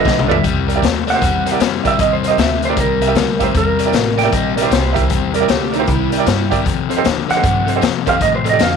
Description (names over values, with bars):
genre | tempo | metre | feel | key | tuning
electric blues shuffle | 154 BPM | 4/4 | swing 64% on 8ths | C mixolydian | A4 = 441 Hz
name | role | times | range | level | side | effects
clean lap steel guitar | second line | 0.0-0.4, 4.2-6.6 s | Eb4 to G5 | -21 LUFS | right 12 dB | none
bright upright piano | accompaniment | 0.0-8.6 s | Eb4 to E5 | -21 LUFS | right 12 dB | none
crunchy overdriven guitar | riff | 0.0-8.8 s | F2 to A3 | -19 LUFS | left 13 dB | none
upright bass | bass | 0.0-8.8 s | A1 to A2 | -22 LUFS | right 1 dB | none
raw garage drum kit | drums | 0.1-8.7 s | hi-hat, kick drum, snare drum, toms | -19 LUFS | left 5 dB | none
clean lap steel guitar | melody | 1.1-4.3, 7.3-8.8 s | Bb4 to F#5 | -17 LUFS | right 4 dB | none
room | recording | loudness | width
moderate spring reverb, RT60 1.3 s | 1960s-style stereo with parts hard left and right | -13 LUFS | side -6 dB against mid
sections
0.4-8.8 A section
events
drum fill 0.0-0.4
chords
0.4 C7; 6.7 F7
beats
0.05 | 0.44 0.82 1.21 1.60 | 1.99 2.38 2.77 3.16 | 3.54 3.93 4.32 4.71 | 5.10 5.49 5.88 6.26 | 6.65 7.04 7.43 7.82 | 8.21 8.60